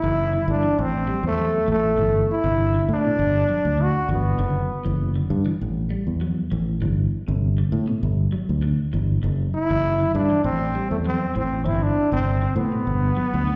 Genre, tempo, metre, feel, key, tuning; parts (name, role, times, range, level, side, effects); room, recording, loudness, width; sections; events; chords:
afrobeat; 99 BPM; 4/4; straight; A dorian; A4 = 440 Hz
clear trombone; melody; 0.0-5.0, 9.5-13.6 s; A3 to F#4; -25 LUFS; equal; slapback echo, tape echo
semi-hollow electric guitar; arpeggios; 0.0-13.6 s; B2 to G3; -31 LUFS; equal; analog chorus, slapback echo
fingered electric bass; bass; 0.0-13.6 s; F#1 to A2; -25 LUFS; equal
moderate club reverb, RT60 0.6 s; live gig heard through the venue's PA, recital hall reverb; -22 LUFS; mono
0.0-13.6 A section
0.0 Gmaj7(no3); 0.8 A7(no3); 3.2 Gmaj7; 5.6 A7(no3); 8.0 Gmaj7(no3); 10.4 Am7; 12.9 Gmaj7